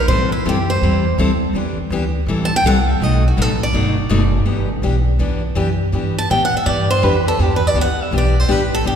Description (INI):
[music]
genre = acoustic string swing (jazz manouche)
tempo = 164 BPM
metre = 4/4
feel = swing 63% on 8ths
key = E minor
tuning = A4 = 439 Hz
[part]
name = picked swing-style acoustic guitar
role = melody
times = 0.0-9.0 s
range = E4 to A5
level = -19 LUFS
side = right 1 dB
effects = none
[part]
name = upright bass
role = bass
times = 0.0-9.0 s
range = F#1 to A2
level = -18 LUFS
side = equal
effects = none
[part]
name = picked steel-string acoustic guitar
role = accompaniment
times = 0.1-9.0 s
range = B2 to A4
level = -19 LUFS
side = left 2 dB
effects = none
[sound]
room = wet church reverb, RT60 2.8 s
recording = recorded in a church or concert hall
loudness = -14 LUFS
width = side -8 dB against mid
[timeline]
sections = 0.0-4.5 A section; 4.5-9.0 A section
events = steel-string acoustic guitar solo 0.0-4.5, 4.5-9.0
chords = 0.1 Am7; 1.5 Em7; 2.3 Am7; 3.0 B7#9; 4.5 Em7